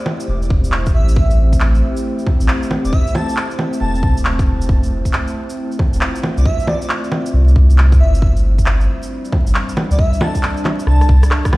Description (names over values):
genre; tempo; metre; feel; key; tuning
future garage; 136 BPM; 4/4; swing 65% on 16ths; A minor; A4 = 440 Hz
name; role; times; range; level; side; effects
warbly tape-like pad; sustained chords; 0.0-11.6 s; G3 to D5; -24 LUFS; equal; chorus, built-in reverb, sidechain pumping
electronic bongos, shaker, handclaps and rim click; drums; 0.1-11.6 s; none; -22 LUFS; equal; studio reverb
warm sub bass; bass; 0.3-11.2 s; E1 to D2; -13 LUFS; equal; none
electronic kick drum; drums; 0.5-11.5 s; none; -15 LUFS; equal; studio reverb
airy dreamy lead; melody; 0.9-11.2 s; D5 to A5; -27 LUFS; equal; chorus, tape echo
room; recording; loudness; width
digital ambience; played on a big sound system in a bare room, large studio reverb, vinyl crackle; -13 LUFS; side -20 dB against mid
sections
0.0-11.6 A section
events
drum fill 10.9-11.6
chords
0.0 Am7; 4.7 Fmaj7; 8.2 Gsus4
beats
0.28 0.72 | 1.17 1.61 2.05 2.49 | 2.93 3.37 3.81 4.25 | 4.70 5.14 5.58 6.02 | 6.46 6.90 7.34 7.78 | 8.22 8.66 9.11 9.55 | 9.99 10.43 10.87 11.31